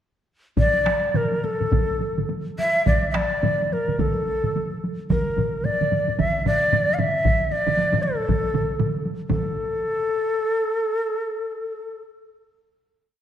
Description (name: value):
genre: japanese traditional, taiko drum ensemble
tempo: 104-127 BPM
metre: 4/4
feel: swing 60% on 16ths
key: unclear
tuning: A4 = 441 Hz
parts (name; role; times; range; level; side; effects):
- breathy shakuhachi; melody; 0.6-12.0 s; A4 to F5; -23 LUFS; left 1 dB; none
- taiko ensemble; percussion; 0.6-9.5 s; none; -30 LUFS; equal; none
- taiko ensemble; percussion; 0.6-9.8 s; none; -29 LUFS; left 3 dB; none
- taiko ensemble; percussion; 0.6-9.8 s; none; -28 LUFS; right 5 dB; none
- taiko ensemble; percussion; 0.6-9.5 s; none; -27 LUFS; right 1 dB; none
room: wet scoring stage reverb, RT60 1.6 s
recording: none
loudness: -20 LUFS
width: side -10 dB against mid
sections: 0.6-9.3 A section; 9.3-11.2 final note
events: speeding up 0.6-11.2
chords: none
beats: | 0.57 1.15 1.73 2.30 | 2.87 3.43 3.99 4.55 | 5.10 5.65 6.19 6.72 | 7.25 7.77 8.29 8.80 | 9.30 9.79 10.28 10.77